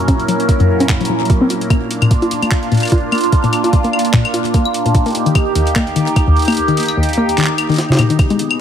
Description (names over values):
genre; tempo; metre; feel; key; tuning
IDM; 148 BPM; 4/4; swing 56% on 16ths; unclear; A4 = 440 Hz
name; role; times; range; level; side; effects
phased analog pad; sustained chords; 0.0-8.6 s; A#2 to A#4; -17 LUFS; right 1 dB; phaser, chorus
warbly dusty pluck; arpeggios; 0.1-8.4 s; D#2 to F#4; -16 LUFS; left 2 dB; chorus, cassette tape, digital delay
electronic kick drum; drums; 0.1-8.3 s; none; -14 LUFS; right 1 dB; overdrive
jungle sampler-style drum kit; drums; 0.1-8.6 s; claves, handclaps, hi-hat, snare drum; -21 LUFS; left 2 dB; digital delay
room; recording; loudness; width
light reverb, digital ambience; none; -12 LUFS; side -9 dB against mid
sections
0.0-8.6 A section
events
kick drops out 6.6-8.2; drum fill 7.8-8.2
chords
0.0 F#7; 1.7 A#; 4.9 D#